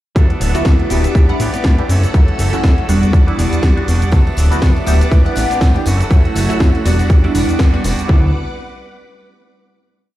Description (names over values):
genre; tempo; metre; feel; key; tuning
filtered disco house; 121 BPM; 4/4; swing 56% on 16ths; D major; A4 = 440 Hz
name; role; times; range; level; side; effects
funky polysynth comp; accompaniment; 0.2-8.3 s; G3 to F#5; -20 LUFS; equal; chorus, phaser, sidechain pumping
string machine, full ensemble; sustained chords; 0.2-8.3 s; G3 to E6; -26 LUFS; left 1 dB; phaser, ensemble chorus, sidechain pumping
clean electric guitar; riff; 0.2-8.3 s; E3 to A4; -24 LUFS; right 4 dB; spring reverb, sidechain pumping
fat analog bass; bass; 0.2-8.3 s; D1 to A2; -16 LUFS; equal; sidechain pumping
electronic kick drum; drums; 0.2-8.2 s; none; -11 LUFS; equal; overdrive
house drum kit; drums; 0.2-8.1 s; cabasa, hi-hat, snare drum; -24 LUFS; equal; overdrive, sidechain pumping on hats, sidechain pumping on perc
tambourine; percussion; 4.1-8.1 s; none; -34 LUFS; left 4 dB; sidechain pumping on perc
room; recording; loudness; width
little or no reverb; played on a big sound system in a bare room, stone room reverb; -11 LUFS; side -15 dB against mid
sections
0.2-8.1 drop; 8.1-10.1 final chord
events
drop 0.2-8.1; band accent 7.6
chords
0.2 D6; 1.2 A9sus4; 1.9 F#m7; 2.9 Em9; 4.1 D6; 5.1 A9sus4; 5.9 F#m7; 6.9 Em9; 8.1 D6